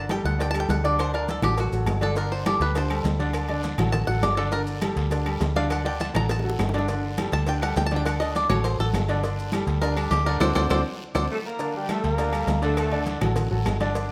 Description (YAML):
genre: latin, salsa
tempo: 204 BPM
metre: 4/4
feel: straight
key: G harmonic minor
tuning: A4 = 440 Hz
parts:
  - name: bluegrass banjo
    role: melody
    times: 0.0-11.3 s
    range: D4 to Bb5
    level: -30 LUFS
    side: equal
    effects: none
  - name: bright concert grand piano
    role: accompaniment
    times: 0.0-14.1 s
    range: D3 to D5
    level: -31 LUFS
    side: equal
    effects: none
  - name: vintage muted fingered electric bass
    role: bass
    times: 0.0-14.1 s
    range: G1 to D2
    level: -28 LUFS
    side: equal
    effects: none
  - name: claves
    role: percussion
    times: 0.1-13.8 s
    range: none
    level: -44 LUFS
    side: equal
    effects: none
  - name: congas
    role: percussion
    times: 0.1-14.1 s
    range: none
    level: -34 LUFS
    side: equal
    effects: none
  - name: cowbell and bongos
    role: percussion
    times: 0.1-14.1 s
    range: none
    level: -39 LUFS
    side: equal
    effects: none
  - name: maracas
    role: percussion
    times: 0.1-14.1 s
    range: none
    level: -50 LUFS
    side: equal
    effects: none
  - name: timbales and agogo bells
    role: percussion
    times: 0.1-14.0 s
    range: none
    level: -37 LUFS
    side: equal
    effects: none
  - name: guiro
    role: percussion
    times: 2.2-14.1 s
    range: none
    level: -46 LUFS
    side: equal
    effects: none
  - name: dark horn section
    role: melody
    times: 11.3-13.1 s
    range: G3 to Bb4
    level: -31 LUFS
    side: equal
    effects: none
room: moderate large studio reverb, RT60 1.3 s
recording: none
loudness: -24 LUFS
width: mono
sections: 0.0-11.6 A section; 11.6-14.1 B section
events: five-string banjo solo 0.0-11.6; drum fill 6.3-6.9, 10.7-11.6; band accent 10.4-11.6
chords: 0.0 Gsus2; 1.0 D; 2.2 Gsus2; 3.3 D; 4.5 Gsus2; 5.7 D; 6.9 Gsus2; 8.1 D; 9.2 Gsus2; 10.4 D7; 11.6 Gmadd9; 12.8 D